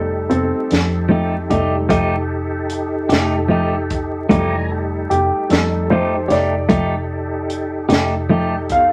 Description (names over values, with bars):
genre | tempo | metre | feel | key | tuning
slow blues | 50 BPM (dotted quarters) | 12/8 | straight | F mixolydian | A4 = 440 Hz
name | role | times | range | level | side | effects
warm upright piano | accompaniment | 0.0-8.9 s | G3 to F5 | -22 LUFS | equal | none
tonewheel organ | sustained chords | 0.0-8.9 s | E3 to Bb5 | -27 LUFS | equal | slow rotary speaker, chorus vibrato
vintage muted fingered electric bass | bass | 0.0-8.9 s | F1 to F2 | -26 LUFS | equal | none
compact cocktail drum kit | drums | 0.3-8.9 s | hi-hat, kick drum, snare drum | -22 LUFS | equal | none
clean electric guitar | accompaniment | 1.1-8.6 s | F3 to G4 | -19 LUFS | equal | harmonic tremolo
room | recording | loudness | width
moderate studio ambience, RT60 0.5 s | vinyl crackle | -18 LUFS | mono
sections
0.0-8.9 A section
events
upright piano solo 0.0-8.9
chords
0.0 F9